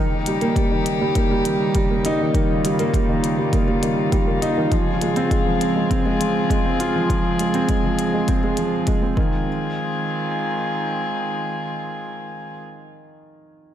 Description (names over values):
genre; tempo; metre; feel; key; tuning
piano and strings electronica; 101 BPM; 4/4; straight; F minor; A4 = 440 Hz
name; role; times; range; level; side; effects
dark string quartet; sustained chords; 0.0-12.6 s; Db3 to Ab4; -25 LUFS; left 2 dB; sidechain pumping
warm concert grand piano; riff; 0.0-13.7 s; Eb3 to F4; -21 LUFS; right 1 dB; digital delay
electronic hi-hat; drums; 0.3-9.0 s; none; -32 LUFS; left 2 dB; studio reverb
electronic kick drum; drums; 0.6-9.3 s; none; -22 LUFS; equal; overdrive, studio reverb
room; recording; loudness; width
moderate concert hall reverb, RT60 2.2 s; none; -18 LUFS; side -10 dB against mid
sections
0.0-9.5 A section; 9.5-11.8 B section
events
none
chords
0.0 Eb7; 4.7 Dbmaj7; 9.2 Fm7